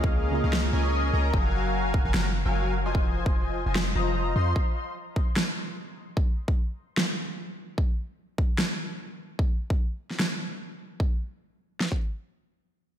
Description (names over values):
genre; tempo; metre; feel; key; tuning
future bass; 149 BPM; 4/4; swing 55% on 16ths, half-time; unclear; A4 = 440 Hz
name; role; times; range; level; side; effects
soft round pluck; accompaniment; 0.0-1.3 s; Db3 to Eb5; -34 LUFS; right 3 dB; analog chorus, sidechain pumping, diffuse ambient delay
big bright polysynth; riff; 0.0-4.5 s; F3 to C6; -29 LUFS; left 2 dB; wide subtle chorus, sidechain pumping, diffuse ambient delay
warm 808-style bass; bass; 0.0-4.5 s; F1 to F2; -27 LUFS; equal; sidechain pumping
big-room dance drum kit; drums; 0.0-12.0 s; kick drum, snare drum; -25 LUFS; equal; overdrive, small room ambience
electronic snare drum; drums; 0.5-10.3 s; none; -29 LUFS; equal; overdrive, small room ambience
room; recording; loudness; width
moderate lush hall reverb, RT60 1.8 s, digital ambience; dreamy mix soaked in reverb; -24 LUFS; side -10 dB against mid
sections
0.0-11.0 A section; 11.0-13.0 B section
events
filter sweep on analog polysynth 0.0-4.6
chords
0.0 Db69; 1.3 Gbmaj9; 2.7 Fm7; 4.6 N.C.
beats
0.13 0.53 0.93 | 1.34 1.74 2.14 2.54 | 2.95 3.35 3.75 4.16 | 4.56 4.96 5.36 5.77 | 6.17 6.57 6.97 7.38 | 7.78 8.18 8.58 8.99 | 9.39 9.79 10.20 10.60 | 11.00 11.40 11.81